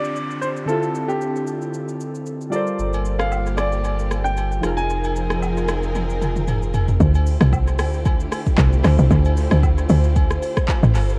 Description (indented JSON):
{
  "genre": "amapiano",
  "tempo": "114 BPM",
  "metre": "4/4",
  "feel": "swing 55% on 16ths",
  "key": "D minor",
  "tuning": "A4 = 440 Hz",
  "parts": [
    { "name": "warm baby grand piano", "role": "melody", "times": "0.0-6.4 s", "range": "G4 to Ab5", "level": "-28 LUFS", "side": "equal", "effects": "dub echo" },
    { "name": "warm analog keys", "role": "accompaniment", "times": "0.0-7.0 s", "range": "D3 to C5", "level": "-29 LUFS", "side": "equal", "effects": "chorus" },
    { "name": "deep house drum kit", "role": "drums", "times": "0.0-11.2 s", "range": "handclaps, hi-hat, kick drum, rim click, shaker, toms", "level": "-25 LUFS", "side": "equal", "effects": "overdrive, dub echo" },
    { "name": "downlifter", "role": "sound effects", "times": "0.0-2.8 s", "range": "none", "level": "-42 LUFS", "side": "equal", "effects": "none" },
    { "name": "rich studio string section", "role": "sustained chords", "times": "2.8-11.2 s", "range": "D3 to C5", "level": "-31 LUFS", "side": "equal", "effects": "sidechain pumping" },
    { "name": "sub bass with octave", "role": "bass", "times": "2.8-7.0 s", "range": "F1 to G1", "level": "-26 LUFS", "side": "equal", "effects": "none" },
    { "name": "agogo bells and woodblock", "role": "percussion", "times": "2.9-11.1 s", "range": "none", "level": "-36 LUFS", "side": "equal", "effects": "dub echo" },
    { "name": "woody log drum bass", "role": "bass", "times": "7.0-11.2 s", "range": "G1 to D2", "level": "-18 LUFS", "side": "equal", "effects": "none" }
  ],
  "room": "little or no reverb",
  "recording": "echo-heavy mix, cassette tape",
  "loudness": "-20 LUFS",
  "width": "mono",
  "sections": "0.0-7.0 A section; 7.0-11.2 B section",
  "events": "drum fill 6.0-7.0; drop 7.0-11.2",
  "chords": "0.0 Dm11; 2.5 Gm11; 4.6 Fm7; 7.0 Dm11"
}